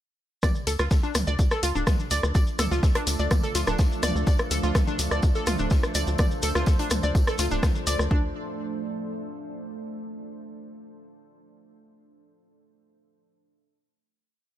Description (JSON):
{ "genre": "melodic techno", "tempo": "125 BPM", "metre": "4/4", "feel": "straight", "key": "D minor", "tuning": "A4 = 440 Hz", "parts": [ { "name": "deep dark ambient pad", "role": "sustained chords", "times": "1.7-8.3 s", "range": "F3 to D5", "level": "-34 LUFS", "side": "right 1 dB", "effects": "chorus, built-in reverb, sidechain pumping" }, { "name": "analog pluck", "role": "arpeggios", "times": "0.4-8.3 s", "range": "D4 to D5", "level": "-30 LUFS", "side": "equal", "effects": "chorus, sidechain pumping, ping-pong delay" }, { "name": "tight sequencer bass", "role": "bass", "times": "0.4-8.3 s", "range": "D1 to D2", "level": "-28 LUFS", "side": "equal", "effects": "sidechain pumping" }, { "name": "big rock drum kit", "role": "drums", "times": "0.4-8.0 s", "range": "hi-hat, snare drum, tambourine", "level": "-42 LUFS", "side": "left 1 dB", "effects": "sidechain pumping on hats, high-pass filter on hats, high-pass filter on snare, sidechain pumping on perc, high-pass filter on perc, high-pass filter on room" }, { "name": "deep house drum kit", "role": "drums", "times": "0.4-8.1 s", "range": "hi-hat, rim click, toms", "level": "-29 LUFS", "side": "equal", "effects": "none" }, { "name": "electronic kick drum", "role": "drums", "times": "0.4-8.2 s", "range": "none", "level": "-22 LUFS", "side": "equal", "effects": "none" }, { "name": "maracas", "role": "percussion", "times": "0.4-8.1 s", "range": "none", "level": "-36 LUFS", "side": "left 1 dB", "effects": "none" } ], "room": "small room ambience", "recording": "none", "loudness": "-22 LUFS", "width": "side -12 dB against mid", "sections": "0.4-8.1 drop; 8.1-10.0 final chord", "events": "drop 0.4-8.1", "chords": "0.4 Dm", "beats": "| 0.43 0.91 1.39 1.87 | 2.35 2.83 3.31 3.79 | 4.27 4.75 5.23 5.71 | 6.19 6.67 7.15 7.63 | 8.11" }